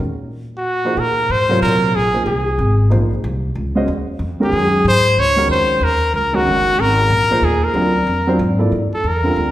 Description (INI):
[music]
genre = modal jazz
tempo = 186 BPM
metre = 3/4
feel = swing 62% on 8ths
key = Bb minor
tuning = A4 = 439 Hz
[part]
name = upright bass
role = bass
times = 0.0-9.5 s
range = Gb1 to Bb2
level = -19 LUFS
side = equal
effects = none
[part]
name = bright trumpet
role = melody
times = 0.6-9.5 s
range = Gb4 to Db5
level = -16 LUFS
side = equal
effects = none
[part]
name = warm baby grand piano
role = accompaniment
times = 0.8-9.5 s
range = C3 to Eb5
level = -20 LUFS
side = right 1 dB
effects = none
[sound]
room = wet recital hall reverb, RT60 1.3 s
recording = recorded in a church or concert hall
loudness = -14 LUFS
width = side -14 dB against mid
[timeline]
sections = 1.0-8.7 A section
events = none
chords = 0.0 Ebm (rootless); 1.0 Bb9sus4; 4.8 Ab9sus4; 7.8 D7alt; 8.7 Gm7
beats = | 0.00 0.33 0.65 | 0.97 1.29 1.62 | 1.94 2.27 2.59 | 2.91 3.23 3.56 | 3.88 4.20 4.53 | 4.85 5.17 5.50 | 5.82 6.14 6.46 | 6.79 7.11 7.43 | 7.75 8.08 8.40 | 8.72 9.04 9.37